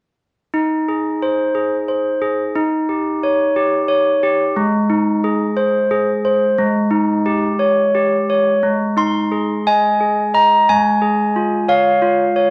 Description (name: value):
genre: classical, lullaby for handbells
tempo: 60 BPM (dotted quarters)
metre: 6/8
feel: straight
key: Ab major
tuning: A4 = 442 Hz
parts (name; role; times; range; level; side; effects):
- handbells; solo; 0.5-12.5 s; Ab3 to C6; -16 LUFS; equal; none
room: moderate large studio reverb, RT60 0.9 s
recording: none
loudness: -17 LUFS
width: mono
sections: 0.5-8.6 A section; 8.6-12.5 B section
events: none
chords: 0.5 Ab/Eb; 2.6 Eb7; 4.6 Ab; 6.6 Eb7/Ab; 8.6 Ab; 10.7 Db/Ab